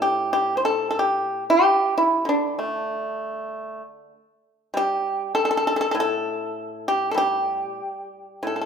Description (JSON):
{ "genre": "chinese traditional, Chinese solo plucked strings", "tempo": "90-100 BPM", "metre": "4/4", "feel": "rubato", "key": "unclear", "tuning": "A4 = 440 Hz", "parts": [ { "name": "pipa", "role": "solo", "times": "0.0-8.7 s", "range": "A2 to C5", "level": "-21 LUFS", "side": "equal", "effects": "none" } ], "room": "moderate recital hall reverb, RT60 1.7 s", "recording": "minimal, uncompressed stereo recording", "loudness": "-21 LUFS", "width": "side -7 dB against mid", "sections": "0.0-8.7 A section", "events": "none", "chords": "none", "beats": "0.30 0.96 1.61 | 2.26 2.89 3.50 4.13 | 4.74 5.36 5.97 6.58 | 7.19 7.82 8.47" }